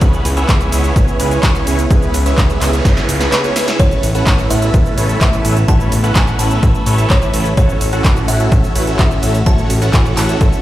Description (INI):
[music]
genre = EDM, festival progressive house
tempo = 127 BPM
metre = 4/4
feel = straight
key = A major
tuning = A4 = 438 Hz
[part]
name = lush unison pad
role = sustained chords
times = 0.2-10.6 s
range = C#3 to F#4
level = -25 LUFS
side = equal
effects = chorus, sidechain pumping
[part]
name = big supersaw lead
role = riff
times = 0.0-10.6 s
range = B3 to F#5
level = -19 LUFS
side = right 1 dB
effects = phaser, sidechain pumping, dub echo
[part]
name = fat analog bass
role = bass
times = 0.0-10.5 s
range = G#1 to A2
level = -17 LUFS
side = equal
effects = sidechain pumping
[part]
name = big-room dance drum kit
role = drums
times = 0.0-10.6 s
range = handclaps, hi-hat, ride cymbal, shaker, snare drum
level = -21 LUFS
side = equal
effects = none
[part]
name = electronic kick drum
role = drums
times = 0.0-10.5 s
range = none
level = -12 LUFS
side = equal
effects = none
[part]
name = noise sweep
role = sound effects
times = 2.5-3.8 s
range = none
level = -26 LUFS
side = equal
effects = none
[part]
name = kalimba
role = melody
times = 3.8-10.6 s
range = C#5 to A5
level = -23 LUFS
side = left 1 dB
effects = dub echo
[sound]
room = light reverb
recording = played on a big sound system in a bare room, large studio reverb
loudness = -11 LUFS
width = side -14 dB against mid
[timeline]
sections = 0.0-10.6 A section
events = noise sweep 2.5-3.8; drum fill 2.9-3.8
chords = 0.0 C#m7; 3.8 Aadd9